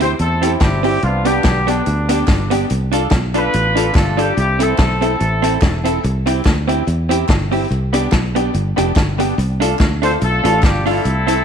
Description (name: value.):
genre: ska.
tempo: 144 BPM.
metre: 4/4.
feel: swing 55% on 8ths.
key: unclear.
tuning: A4 = 439 Hz.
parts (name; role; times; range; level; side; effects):
clear horn section; melody; 0.0-5.8, 10.0-11.4 s; D3 to C5; -19 LUFS; left 1 dB; none.
hollow-body jazz guitar; accompaniment; 0.0-11.4 s; B3 to A4; -21 LUFS; right 12 dB; none.
honky-tonk upright piano; stabs; 0.0-11.4 s; A3 to A4; -22 LUFS; left 11 dB; none.
fingered electric bass; bass; 0.0-11.4 s; E1 to E2; -19 LUFS; equal; none.
vintage drum kit; drums; 0.0-11.4 s; hi-hat, kick drum, snare drum; -18 LUFS; equal; none.
group handclap; percussion; 0.6-10.7 s; none; -37 LUFS; right 12 dB; none.
room: light reverb, studio reverb.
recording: 1960s-style stereo with parts hard left and right.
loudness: -14 LUFS.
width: side -7 dB against mid.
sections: 0.0-11.4 A section.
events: none.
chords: 0.0 C; 1.0 G; 2.7 Dm; 4.4 Am; 6.0 C; 7.7 G; 9.4 Dm/C.